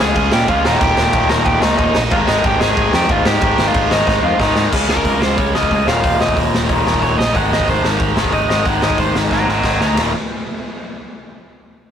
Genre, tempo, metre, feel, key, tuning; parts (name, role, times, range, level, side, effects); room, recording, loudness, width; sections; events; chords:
punk rock; 183 BPM; 4/4; straight; Eb mixolydian; A4 = 440 Hz
biting lead guitar; melody; 0.0-10.0 s; Eb4 to Bb5; -19 LUFS; right 1 dB; overdrive
raw garage guitar; riff; 0.0-10.1 s; Eb2 to Db4; -18 LUFS; left 3 dB; overdrive
tight distorted guitar; riff; 0.0-10.1 s; Eb2 to Ab4; -24 LUFS; right 7 dB; distortion
modern bright picked electric bass; bass; 0.0-10.1 s; Eb1 to Bb2; -21 LUFS; equal
raw garage drum kit; drums; 0.2-10.0 s; crash cymbal, hi-hat, kick drum, ride cymbal, snare drum; -19 LUFS; equal
light reverb; rough rehearsal-room recording, tube saturation; -13 LUFS; side -8 dB against mid
0.0-4.7 A section; 4.7-10.0 B section; 10.0-11.3 C section
drum fill 4.1-4.7, 9.3-10.0; lead electric guitar solo 4.7-10.0
0.0 Db; 0.7 Eb; 2.1 Ab; 4.7 Db; 5.9 Eb; 7.3 Ab; 10.0 Eb5